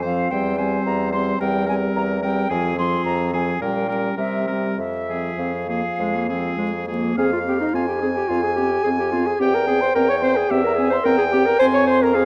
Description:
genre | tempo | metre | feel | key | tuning
quick classical-period movement for wind quintet | 98-111 BPM | 4/4 | rubato | F minor | A4 = 440 Hz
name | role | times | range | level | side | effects
silver concert flute | melody | 0.0-12.2 s | Eb5 to Db6 | -30 LUFS | equal | none
bright oboe | second line | 0.0-12.2 s | Ab4 to Ab5 | -29 LUFS | equal | none
mellow French horn | accompaniment | 0.0-12.2 s | F3 to C4 | -28 LUFS | equal | none
warm clarinet | accompaniment | 0.0-12.2 s | Ab3 to Db5 | -25 LUFS | equal | none
clear bassoon | bass | 0.0-12.2 s | E2 to C3 | -28 LUFS | equal | none
room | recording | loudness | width
moderate concert hall reverb, RT60 1.9 s | close, detailed microphones, vinyl crackle | -21 LUFS | mono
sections
0.0-7.2 A section; 7.2-12.2 B section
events
none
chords
0.3 C/E; 2.5 Fm; 3.6 Gdim/Bb; 4.2 C7; 4.8 Fm; 9.4 C/E; 11.6 Fm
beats
| 0.32 0.86 1.40 1.95 | 2.50 3.05 3.60 4.18 | 4.78 5.38 5.99 6.59 | 7.18 7.75 8.31 8.86 | 9.41 9.96 10.51 11.06 | 11.61 12.15

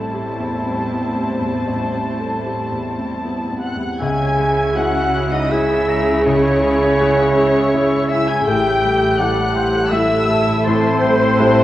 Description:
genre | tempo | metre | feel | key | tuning
cinematic, emotional film score for orchestra | 80 BPM | 3/4 | rubato | unclear | A4 = 440 Hz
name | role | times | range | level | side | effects
muted studio violin section | second line | 0.0-11.6 s | C5 to A5 | -23 LUFS | left 1 dB | none
felt-muted upright piano | accompaniment | 0.0-11.6 s | A1 to A4 | -23 LUFS | equal | none
muted studio viola section | accompaniment | 0.0-11.6 s | G3 to A4 | -24 LUFS | right 1 dB | none
concert harp | arpeggios | 0.0-11.6 s | A2 to E5 | -26 LUFS | left 2 dB | none
muted studio cello section | bass | 0.0-11.6 s | A2 to C#3 | -24 LUFS | right 2 dB | none
muted studio violin section | melody | 3.6-11.6 s | C6 to G#6 | -26 LUFS | left 3 dB | none
concert flute | second line | 3.6-11.6 s | C5 to G#5 | -24 LUFS | left 1 dB | none
dark French horn section | sustained chords | 3.6-11.6 s | C4 to G#4 | -22 LUFS | left 1 dB | none
warm oboe | second line | 4.0-11.6 s | C5 to A#5 | -26 LUFS | right 1 dB | none
muted studio double bass section | bass | 4.0-11.6 s | A1 to C#2 | -25 LUFS | right 3 dB | none
room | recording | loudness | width
wet scoring stage reverb, RT60 2.0 s | worn, warbling old tape, cassette tape, warbly pitch drift | -15 LUFS | side -14 dB against mid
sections
0.0-4.0 A section; 4.0-11.6 B section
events
none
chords
0.0 Am7; 4.0 C#m; 8.5 Am7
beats
0.16 0.91 | 1.68 2.46 3.24 | 4.01 4.76 5.51 | 6.26 7.00 7.73 | 8.47 9.20 9.93 | 10.66 11.39

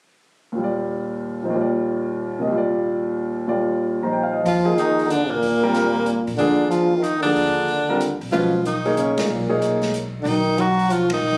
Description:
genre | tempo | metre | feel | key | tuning
modal jazz | 186 BPM | 3/4 | swing 64% on 8ths | Eb major | A4 = 441 Hz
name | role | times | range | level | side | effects
clear concert grand piano | accompaniment | 0.5-9.9 s | Eb2 to Bb5 | -24 LUFS | equal | none
warm trombone | second line | 4.4-11.4 s | A#2 to F#3 | -25 LUFS | equal | none
warm tenor saxophone | melody | 4.5-11.4 s | A#3 to F#4 | -24 LUFS | equal | none
upright bass | bass | 4.5-11.4 s | Bb1 to Bb2 | -32 LUFS | equal | none
vintage drum kit | drums | 4.5-11.2 s | hi-hat, kick drum, ride cymbal, snare drum | -36 LUFS | equal | none
room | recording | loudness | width
light reverb | recorded on a phone in the room, club reverb, compression | -21 LUFS | mono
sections
0.6-4.5 A section; 4.5-11.4 B section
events
band accent 9.1, 11.1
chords
0.6 Ebmaj9; 8.3 Bmaj9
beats
| 0.57 0.90 1.22 | 1.54 1.87 2.19 | 2.52 2.84 3.16 | 3.48 3.81 4.13 | 4.46 4.78 5.10 | 5.42 5.75 6.07 | 6.39 6.71 7.04 | 7.36 7.68 8.01 | 8.33 8.65 8.97 | 9.29 9.62 9.94 | 10.26 10.58 10.91 | 11.23

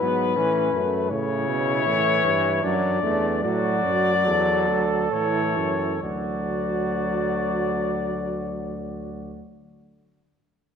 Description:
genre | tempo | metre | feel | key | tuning
classical, imitative canzona for brass ensemble | 64-82 BPM | 3/4 | straight | D major | A4 = 440 Hz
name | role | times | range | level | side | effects
dark cornet | melody | 0.0-9.4 s | B4 to D5 | -24 LUFS | left 7 dB | none
mellow flugelhorn | second line | 0.0-9.4 s | B3 to A4 | -29 LUFS | right 8 dB | none
clear trombone | accompaniment | 0.0-9.4 s | C#3 to A3 | -28 LUFS | right 3 dB | none
mellow bass trombone | bass | 0.0-9.4 s | D2 to B2 | -29 LUFS | right 2 dB | none
room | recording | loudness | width
wet concert hall reverb, RT60 1.8 s | none | -21 LUFS | side -7 dB against mid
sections
0.0-6.0 A section; 6.0-8.8 B section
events
slowing down 0.0-6.0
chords
0.4 A; 2.6 D/F#; 3.4 D; 5.1 A; 6.0 D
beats
0.37 | 1.11 1.86 2.64 | 3.44 4.26 5.12 | 6.03 6.96 7.89

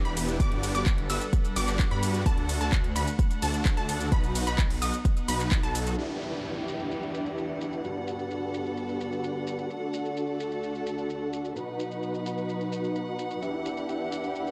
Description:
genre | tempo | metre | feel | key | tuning
EDM, festival progressive house | 129 BPM | 4/4 | straight | E minor | A4 = 435 Hz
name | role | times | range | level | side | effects
dark chamber string section | sustained chords | 0.0-14.5 s | D2 to F#5 | -38 LUFS | equal | sidechain pumping
unison pluck | arpeggios | 0.0-6.0 s | A5 to E6 | -37 LUFS | equal | cassette tape, sidechain pumping, tape echo
big supersaw lead | riff | 0.0-14.5 s | B3 to F#5 | -35 LUFS | equal | sidechain pumping, low-pass filter, tape echo
detuned saw bass | bass | 0.0-6.0 s | E1 to G2 | -33 LUFS | equal | chorus, sidechain pumping
house drum kit | drums | 0.1-14.5 s | handclaps, hi-hat, ride cymbal, shaker | -39 LUFS | equal | low-pass filter on hats, small room reverb, low-pass filter on cymbals, low-pass filter on perc, low-pass filter on snare
electronic kick drum | drums | 0.4-5.6 s | none | -27 LUFS | equal | small room reverb
downlifter | sound effects | 6.0-9.7 s | none | -44 LUFS | equal | none
room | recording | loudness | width
moderate lush hall reverb, RT60 1.9 s | dark, warm production | -29 LUFS | mono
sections
0.0-6.0 A section; 6.0-14.5 B section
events
drop 0.0-6.0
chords
0.4 Gmaj7; 2.3 D; 4.1 B; 6.0 Em7; 7.8 Gmaj7; 9.7 D; 11.6 B; 13.4 Em7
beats
| 0.40 0.86 1.33 1.79 | 2.26 2.73 3.19 3.65 | 4.12 4.58 5.05 5.52 | 5.98 6.45 6.91 7.38 | 7.84 8.31 8.77 9.24 | 9.70 10.17 10.63 11.10 | 11.56 12.03 12.49 12.96 | 13.42 13.89 14.35

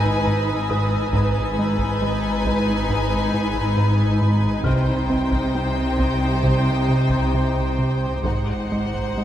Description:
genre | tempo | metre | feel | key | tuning
cinematic, suspense film score | 68 BPM | 4/4 | straight | unclear | A4 = 441 Hz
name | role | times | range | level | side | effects
clear studio violin section | melody | 0.0-9.2 s | Gb5 to Ab5 | -31 LUFS | left 1 dB | none
clear studio violin section | second line | 0.0-9.2 s | Cb5 to C5 | -28 LUFS | right 1 dB | none
clear studio viola section | accompaniment | 0.0-9.2 s | Eb4 | -30 LUFS | left 3 dB | none
rubbery square bass | riff | 0.0-9.2 s | Ab2 to C4 | -24 LUFS | right 1 dB | none
dark studio cello section | bass | 0.0-9.2 s | Ab2 to C3 | -25 LUFS | equal | none
rich studio double bass section | bass | 0.0-9.2 s | Ab1 to C2 | -26 LUFS | equal | none
swarming drone | drone | 0.0-9.2 s | Ab1 to C2 | -31 LUFS | equal | built-in reverb
taiko ensemble | drums | 0.0-9.2 s | none | -30 LUFS | equal | none
warm studio violin section | texture | 0.0-4.2 s | Eb6 to Bb6 | -36 LUFS | equal | none
felt-muted upright piano | texture | 0.7-8.3 s | Cb5 to F6 | -35 LUFS | equal | none
room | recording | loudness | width
moderate cathedral reverb, RT60 5.0 s | in a vast, echoing space | -18 LUFS | side -11 dB against mid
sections
0.0-9.2 A section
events
none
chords
0.0 Abm; 4.7 Cm; 8.2 Ab7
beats
0.27 | 1.14 2.02 2.90 3.77 | 4.65 5.54 6.43 7.33 | 8.25 9.18

